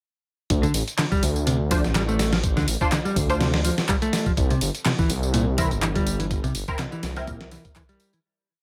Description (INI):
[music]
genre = breakbeat, breaks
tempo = 124 BPM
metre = 4/4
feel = swing 55% on 16ths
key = D minor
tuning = A4 = 439 Hz
[part]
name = dark detuned saw bass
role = bass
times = 0.5-7.6 s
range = G1 to D2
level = -27 LUFS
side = equal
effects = none
[part]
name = dusty soul sampler-style drum kit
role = drums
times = 0.5-8.2 s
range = hi-hat, kick drum, snare drum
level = -28 LUFS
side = equal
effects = none
[part]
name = punchy analog drum machine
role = drums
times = 0.5-8.2 s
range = handclaps, hi-hat, tambourine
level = -33 LUFS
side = equal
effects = overdrive
[part]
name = clean electric guitar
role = riff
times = 0.6-8.2 s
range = Bb2 to A3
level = -28 LUFS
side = equal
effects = tape echo
[part]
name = band-passed chord stab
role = stabs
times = 1.7-8.2 s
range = C4 to C5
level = -33 LUFS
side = equal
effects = phaser, ensemble chorus, tape echo
[sound]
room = digital ambience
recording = none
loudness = -23 LUFS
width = mono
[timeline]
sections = 0.5-8.2 drop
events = drop 0.5-8.2; fade-out 5.7-8.2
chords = 0.5 Dm7; 4.4 C7